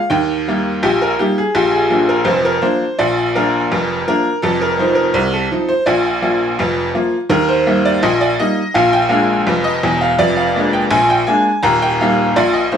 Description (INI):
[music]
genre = ragtime piano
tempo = 83 BPM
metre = 2/4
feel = straight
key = unclear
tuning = A4 = 440 Hz
[part]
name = tack piano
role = solo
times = 0.0-12.8 s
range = Eb1 to Bb5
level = -13 LUFS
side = equal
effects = none
[sound]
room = wet studio reverb, RT60 0.7 s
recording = band playing live in one room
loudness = -13 LUFS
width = side -8 dB against mid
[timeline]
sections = 0.0-12.8 A section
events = none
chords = 0.1 Eb; 1.6 Bb; 4.4 F5; 5.9 Bb; 7.3 Eb; 8.7 Bb7; 10.2 Bb7/F; 11.6 Eb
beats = | 0.11 0.84 | 1.56 2.28 | 3.00 3.72 | 4.44 5.15 | 5.87 6.59 | 7.31 8.03 | 8.75 9.47 | 10.19 10.91 | 11.63 12.35